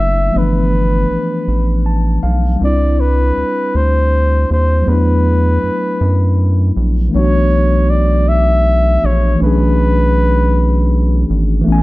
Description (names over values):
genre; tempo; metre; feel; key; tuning
slow six-eight R&B; 53 BPM (dotted quarters); 6/8; straight; unclear; A4 = 440 Hz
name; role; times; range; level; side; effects
breathy flugelhorn; melody; 0.0-11.3 s; B4 to E5; -18 LUFS; equal; none
mellow tine electric piano; accompaniment; 0.0-11.8 s; E3 to A5; -18 LUFS; left 1 dB; fast stereo tremolo
round analog bass; bass; 0.0-11.8 s; F#1 to F#2; -13 LUFS; equal; none
room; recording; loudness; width
light reverb, small room ambience; dark, warm production; -11 LUFS; side -19 dB against mid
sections
0.0-7.1 A section; 7.1-11.8 B section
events
tine electric piano fill 1.5-2.6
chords
0.3 G13; 2.6 Cmaj9; 4.9 E9sus4; 7.1 Bm11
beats
| 0.33 1.47 | 2.60 3.73 | 4.86 5.99 | 7.13 8.26 | 9.39 10.52 | 11.65